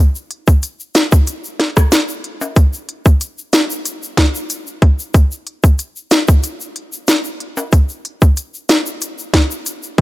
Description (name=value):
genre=dancehall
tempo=93 BPM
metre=4/4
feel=straight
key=none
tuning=none
part: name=tube shaker and timbales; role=percussion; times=0.2-10.0 s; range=none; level=-25 LUFS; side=left 3 dB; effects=none
part: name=island pop drum kit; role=drums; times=0.3-10.0 s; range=hi-hat, kick drum, rim click, snare drum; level=-12 LUFS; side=equal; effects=overdrive
room=digital ambience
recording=none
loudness=-13 LUFS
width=side -18 dB against mid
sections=0.0-10.0 A section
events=none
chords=none